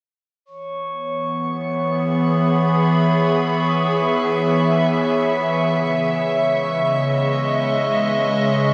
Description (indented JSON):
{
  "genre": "ambient",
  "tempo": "free time",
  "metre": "none",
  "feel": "none",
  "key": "E major",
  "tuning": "A4 = 439 Hz",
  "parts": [
    { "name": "evolving wavetable pad", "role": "sustained chords", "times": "1.2-8.7 s", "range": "C#3 to B5", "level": "-20 LUFS", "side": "equal", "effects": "chorus, built-in reverb" },
    { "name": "glass harmonica", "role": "texture", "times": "0.5-8.7 s", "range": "C#5 to C#6", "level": "-26 LUFS", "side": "equal", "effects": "none" }
  ],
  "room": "wet shimmer reverb, RT60 7.6 s",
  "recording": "dark, warm production",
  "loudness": "-19 LUFS",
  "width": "mono",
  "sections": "0.5-8.7 A section",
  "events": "none",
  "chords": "0.5 E; 5.7 C#m7",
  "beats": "free time"
}